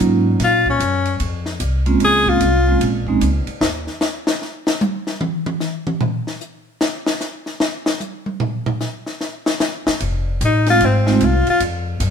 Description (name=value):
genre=jazz, small-group swing and bop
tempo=150 BPM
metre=4/4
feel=swing 64% on 8ths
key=Bb minor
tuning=A4 = 441 Hz
part: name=vibraphone with medium mallets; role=accompaniment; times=0.0-3.2, 10.7-11.2 s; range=Gb3 to F4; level=-18 LUFS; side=right 4 dB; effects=none
part: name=upright bass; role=bass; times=0.0-3.9, 9.9-12.1 s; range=F1 to Bb2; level=-19 LUFS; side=equal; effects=none
part: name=compact cocktail drum kit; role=drums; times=0.0-12.1 s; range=hi-hat, kick drum, ride cymbal, snare drum, toms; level=-22 LUFS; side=left 1 dB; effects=none
part: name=clear tenor saxophone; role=melody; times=0.4-2.8, 10.4-11.6 s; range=C4 to Ab4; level=-16 LUFS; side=left 3 dB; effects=none
room=moderate stone room reverb, RT60 1.2 s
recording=band playing live in one room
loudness=-16 LUFS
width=side -7 dB against mid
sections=0.0-12.1 A section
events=tenor saxophone solo 0.0-12.1; drum solo 3.6-10.0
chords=0.4 Bbm9; 3.6 N.C.; 10.0 F7#9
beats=0.01 | 0.41 0.81 1.21 1.61 | 2.02 2.42 2.81 3.22 | 3.62 4.02 4.42 4.82 | 5.22 5.62 6.02 6.42 | 6.82 7.22 7.62 8.02 | 8.42 8.82 9.22 9.62 | 10.02 10.41 10.81 11.21 | 11.61 12.01